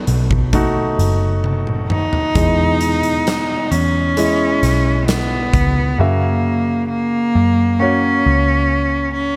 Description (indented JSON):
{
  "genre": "pop ballad",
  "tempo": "66 BPM",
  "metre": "4/4",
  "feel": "straight",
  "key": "E major",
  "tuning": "A4 = 444 Hz",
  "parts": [
    { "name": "clear grand piano", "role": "accompaniment", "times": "0.0-9.4 s", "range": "B2 to E5", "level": "-23 LUFS", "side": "equal", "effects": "none" },
    { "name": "vintage muted picked electric bass", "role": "bass", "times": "0.0-9.4 s", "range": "F#1 to F#2", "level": "-21 LUFS", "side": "equal", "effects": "none" },
    { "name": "huge arena drum kit", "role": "drums", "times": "0.1-5.7 s", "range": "hi-hat, kick drum, snare drum, toms", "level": "-24 LUFS", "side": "equal", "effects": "none" },
    { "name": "clear cello", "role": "melody", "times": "1.9-9.4 s", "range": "A#3 to D#4", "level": "-20 LUFS", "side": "equal", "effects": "none" }
  ],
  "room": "studio reverb",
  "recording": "none",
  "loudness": "-16 LUFS",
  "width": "mono",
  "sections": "0.0-9.4 A section",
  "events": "drum fill 1.4-2.4",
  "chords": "0.0 B7; 2.4 Emaj7; 6.0 F#7"
}